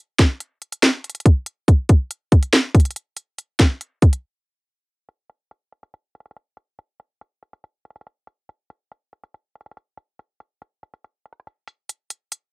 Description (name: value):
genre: hip hop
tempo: 141 BPM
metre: 4/4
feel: half-time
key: none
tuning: none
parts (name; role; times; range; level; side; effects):
- trap drum kit; drums; 0.2-12.4 s; finger snaps, hi-hat, kick drum, snare drum; -13 LUFS; equal; cassette tape
room: light reverb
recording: home recording on cassette, low-pass filter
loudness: -16 LUFS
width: side -27 dB against mid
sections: 0.0-5.1 A section; 5.1-11.9 B section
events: break 4.2-5.1; filter sweep 5.1-11.9; kick muted 11.0-11.9, 11.9-12.5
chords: none